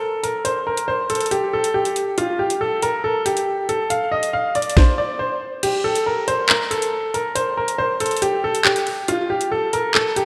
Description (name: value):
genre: hip hop, drill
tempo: 139 BPM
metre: 4/4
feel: half-time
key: G minor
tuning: A4 = 440 Hz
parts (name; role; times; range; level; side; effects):
- bright concert grand piano; melody; 0.0-10.2 s; F4 to F5; -22 LUFS; equal; low-pass filter, analog delay
- drill drum kit; drums; 0.2-10.2 s; crash cymbal, handclaps, hi-hat, kick drum, snare drum; -22 LUFS; equal; none
room: wet lush hall reverb, RT60 1.8 s, digital ambience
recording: dreamy mix soaked in reverb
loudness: -20 LUFS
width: mono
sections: 0.0-5.6 A section; 5.6-10.2 B section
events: kick muted 5.6-10.2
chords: none